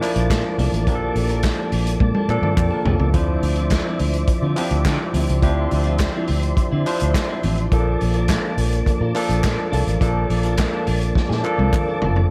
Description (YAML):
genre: disco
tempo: 105 BPM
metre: 4/4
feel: straight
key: unclear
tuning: A4 = 436 Hz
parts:
  - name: barky tine electric piano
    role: accompaniment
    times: 0.0-12.3 s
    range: F3 to G5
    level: -27 LUFS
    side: equal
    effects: overdrive
  - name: clean electric guitar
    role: accompaniment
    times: 0.0-12.2 s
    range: F3 to Bb4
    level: -33 LUFS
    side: equal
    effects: tremolo
  - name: tonewheel organ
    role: sustained chords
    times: 0.0-12.3 s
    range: Bb3 to D6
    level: -31 LUFS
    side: equal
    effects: overdrive, chorus vibrato, slow rotary speaker
  - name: vintage drum kit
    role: drums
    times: 0.0-12.3 s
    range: handclaps, hi-hat, kick drum, snare drum, toms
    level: -25 LUFS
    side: equal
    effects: none
  - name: group handclap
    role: percussion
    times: 0.0-11.9 s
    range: none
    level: -37 LUFS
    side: equal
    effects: none
  - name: vintage muted fingered electric bass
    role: bass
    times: 0.2-12.3 s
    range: F#1 to D3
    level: -23 LUFS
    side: equal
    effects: none
room: little or no reverb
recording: none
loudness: -20 LUFS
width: mono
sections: 0.0-12.3 A section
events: drum fill 2.0-3.1, 11.2-12.3; tine electric piano fill 2.3-3.1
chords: 0.0 Bbmaj7; 3.1 Dm9; 7.7 Bbmaj7